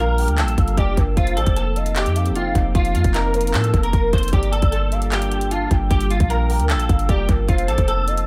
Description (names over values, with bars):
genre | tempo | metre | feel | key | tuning
hip hop, trap | 152 BPM | 4/4 | half-time | G minor | A4 = 441 Hz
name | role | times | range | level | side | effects
clean electric guitar | melody | 0.0-8.3 s | F4 to C5 | -26 LUFS | equal | ensemble chorus, low-pass filter, dub echo
gliding portamento lead | second line | 0.0-8.3 s | Bb4 to A5 | -31 LUFS | equal | chorus, dub echo
dark analog pad | sustained chords | 0.0-8.3 s | F3 to F4 | -31 LUFS | equal | chorus
warm 808-style bass | bass | 0.0-8.3 s | F1 to A2 | -23 LUFS | equal | none
trap drum kit | drums | 0.2-8.3 s | handclaps, hi-hat, kick drum | -23 LUFS | equal | none
room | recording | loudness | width
digital ambience | echo-heavy mix | -19 LUFS | mono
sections
0.0-8.3 A section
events
none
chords
0.0 Gm7; 1.2 F7sus4; 4.3 Gm7; 7.5 F7sus4